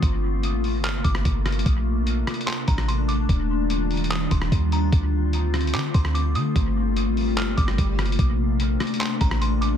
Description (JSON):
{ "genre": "hip hop, atmospheric cloud-rap", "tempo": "147 BPM", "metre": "4/4", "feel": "half-time", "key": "G minor", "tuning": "A4 = 441 Hz", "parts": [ { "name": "glassy FM pad", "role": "sustained chords", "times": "0.0-9.8 s", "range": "C3 to F4", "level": "-26 LUFS", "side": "left 2 dB", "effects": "ensemble chorus, built-in reverb, sidechain pumping" }, { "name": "warm 808-style bass", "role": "bass", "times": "0.0-9.8 s", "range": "Eb1 to D3", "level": "-23 LUFS", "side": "equal", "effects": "none" }, { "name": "lo-fi sampler-style drum kit", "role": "drums", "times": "0.0-9.7 s", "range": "handclaps, hi-hat, kick drum, rim click", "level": "-25 LUFS", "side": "equal", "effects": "none" }, { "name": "delicate synth tine bell", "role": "melody", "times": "0.8-9.8 s", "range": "Bb5 to F6", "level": "-34 LUFS", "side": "right 1 dB", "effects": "chorus, low-pass filter, dub echo" }, { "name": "swell", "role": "sound effects", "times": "6.9-8.2 s", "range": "none", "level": "-36 LUFS", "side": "right 3 dB", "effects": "none" } ], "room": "little or no reverb", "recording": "echo-heavy mix", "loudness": "-20 LUFS", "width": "side -9 dB against mid", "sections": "0.0-8.2 A section; 8.2-9.8 B section", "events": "swell 6.9-8.2", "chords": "0.0 Gm11; 1.7 Bbmaj9; 3.3 Ebmaj9; 4.9 Dm7; 6.6 Gm11; 8.2 Bbmaj9", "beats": "| 0.03 0.43 0.84 1.25 | 1.66 2.07 2.48 2.88 | 3.29 3.70 4.11 4.52 | 4.92 5.33 5.74 6.15 | 6.56 6.96 7.37 7.78 | 8.19 8.60 9.01 9.41" }